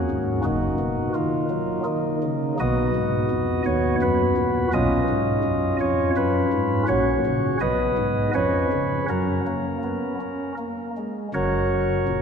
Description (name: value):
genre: classical, chorale-style piece for pipe organ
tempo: 79-86 BPM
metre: 3/4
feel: rubato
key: F# major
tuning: A4 = 440 Hz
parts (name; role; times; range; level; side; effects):
- chamber organ, flutes; solo; 0.0-12.2 s; F#1 to D#5; -20 LUFS; equal; none
room: wet church reverb, RT60 3.1 s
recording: minimal, uncompressed stereo recording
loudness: -20 LUFS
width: side -6 dB against mid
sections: 0.0-11.3 A section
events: none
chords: 0.4 D#m/F#; 2.6 G#m7/B; 4.7 C#7/B; 6.9 F#/A#; 7.6 G#m/B; 8.3 C#7/E#; 9.1 F#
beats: | 0.44 1.15 1.86 | 2.60 3.31 4.01 | 4.72 5.43 6.15 | 6.86 7.58 8.32 | 9.07 9.82 10.58 | 11.33 12.07